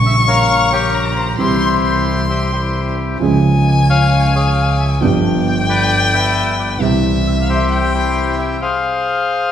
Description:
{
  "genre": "tango",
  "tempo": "133 BPM",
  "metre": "4/4",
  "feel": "rubato",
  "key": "unclear",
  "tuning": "A4 = 441 Hz",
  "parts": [
    { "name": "rich violin", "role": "second line", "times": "0.0-8.6 s", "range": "E5 to Db6", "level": "-20 LUFS", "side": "left 2 dB", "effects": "none" },
    { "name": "warm concert grand piano", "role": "accompaniment", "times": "0.0-8.5 s", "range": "G1 to Ab4", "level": "-17 LUFS", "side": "right 2 dB", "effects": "none" },
    { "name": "clear double bass", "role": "bass", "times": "0.0-8.5 s", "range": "G1 to Db2", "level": "-19 LUFS", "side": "equal", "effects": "none" },
    { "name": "bandoneon", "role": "melody", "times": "0.1-9.5 s", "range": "E4 to Ab5", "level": "-18 LUFS", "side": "left 4 dB", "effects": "none" }
  ],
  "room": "wet recital hall reverb, RT60 1.8 s",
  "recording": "recorded in a church or concert hall",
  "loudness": "-13 LUFS",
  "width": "side -9 dB against mid",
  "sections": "0.0-9.5 A section",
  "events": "none",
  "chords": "0.0 Gdim/Bb; 1.4 C; 3.2 Db; 5.0 G7; 6.8 C; 8.6 Fm",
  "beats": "0.04 0.49 0.94 | 1.39 1.84 2.30 2.76 | 3.22 3.67 4.13 4.58 | 5.03 5.47 5.92 6.36 | 6.81 7.26 7.71 8.15 | 8.61 9.06 9.52"
}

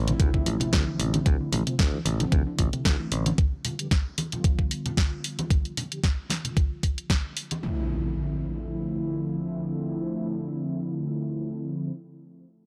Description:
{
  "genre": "nu-disco, nu disco",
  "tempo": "113 BPM",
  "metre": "4/4",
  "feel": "swing 54% on 16ths",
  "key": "D dorian",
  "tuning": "A4 = 440 Hz",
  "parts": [
    { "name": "picked electric bass", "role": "bass", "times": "0.0-3.3 s", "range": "A1 to D2", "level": "-31 LUFS", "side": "equal", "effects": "transformer saturation, sidechain pumping" },
    { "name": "impact", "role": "sound effects", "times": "0.0-1.3, 7.6-12.0 s", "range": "none", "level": "-37 LUFS", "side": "equal", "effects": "none" },
    { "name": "mellow synth brass", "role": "accompaniment", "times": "0.1-11.9 s", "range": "D3 to G4", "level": "-34 LUFS", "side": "equal", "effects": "chorus, sidechain pumping, analog delay" },
    { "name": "soft round pluck", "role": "arpeggios", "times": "0.1-3.3 s", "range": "C3 to F3", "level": "-35 LUFS", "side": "equal", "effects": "chorus, sidechain pumping, analog delay" },
    { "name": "house drum kit", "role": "drums", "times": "0.1-7.6 s", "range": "hi-hat, snare drum", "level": "-32 LUFS", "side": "equal", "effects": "none" },
    { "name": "congas", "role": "percussion", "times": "0.1-7.6 s", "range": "none", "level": "-35 LUFS", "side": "equal", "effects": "none" },
    { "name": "electronic kick drum", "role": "drums", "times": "0.2-7.2 s", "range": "none", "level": "-25 LUFS", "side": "equal", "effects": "overdrive" }
  ],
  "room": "little or no reverb",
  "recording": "dry, gritty hardware recording, transformer saturation",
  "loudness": "-27 LUFS",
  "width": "mono",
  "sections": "0.0-7.6 A section; 7.6-11.9 B section",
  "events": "impact 0.0-1.3; filter sweep on analog polysynth 0.0-7.6",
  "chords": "0.0 Dm9; 3.4 G7; 7.6 Dm9",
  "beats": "0.20 0.73 | 1.26 1.79 2.32 2.85 | 3.38 3.91 4.44 4.97 | 5.51 6.04 6.57 7.10 | 7.63 8.16 8.69 9.22 | 9.75 10.29 10.82 11.35"
}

